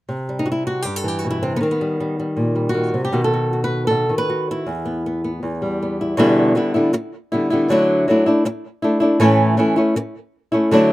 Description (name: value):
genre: flamenco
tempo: free time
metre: none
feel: none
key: E harmonic minor, E minor from 6.2 s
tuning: A4 = 440 Hz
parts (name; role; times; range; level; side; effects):
- flamenco guitar; solo; 0.1-10.9 s; E2 to B4; -16 LUFS; equal; none
room: light reverb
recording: recorded outdoors, with no room sound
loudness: -17 LUFS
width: side -16 dB against mid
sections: 0.1-6.2 A section; 6.2-10.9 B section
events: none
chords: 0.1 C; 1.6 D#; 3.1 B; 4.7 Em; 6.2 Em7; 7.7 Dadd9; 9.2 A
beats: free time